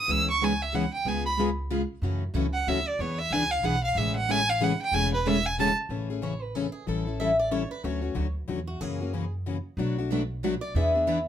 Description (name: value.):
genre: acoustic string swing (jazz manouche).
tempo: 186 BPM.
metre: 3/4.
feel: swing 59% on 8ths.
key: A major.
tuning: A4 = 440 Hz.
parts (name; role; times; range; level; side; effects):
rich violin; melody; 0.0-5.7 s; B4 to E6; -26 LUFS; right 2 dB; none.
picked plugged-in steel-string acoustic guitar; accompaniment; 0.1-11.2 s; B2 to A4; -30 LUFS; left 6 dB; none.
picked steel-string acoustic guitar; accompaniment; 0.1-5.7, 9.8-11.2 s; B2 to B4; -32 LUFS; right 5 dB; none.
upright bass; bass; 0.1-11.3 s; E1 to F#2; -31 LUFS; right 1 dB; none.
picked swing-style acoustic guitar; second line; 6.2-11.2 s; F#4 to E5; -29 LUFS; left 1 dB; none.
room: moderate club reverb, RT60 0.7 s.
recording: minimal, uncompressed stereo recording.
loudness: -25 LUFS.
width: side -10 dB against mid.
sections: 0.0-5.9 A section; 5.9-11.3 A section.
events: violin solo 0.0-5.9; steel-string acoustic guitar solo 5.9-11.3.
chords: 0.1 C#m7; 1.1 C#7; 2.0 F#m7; 3.0 E7; 4.0 Amaj7; 6.9 A7; 7.8 Dmaj9; 8.8 F#7; 9.8 Bm7; 10.7 E7.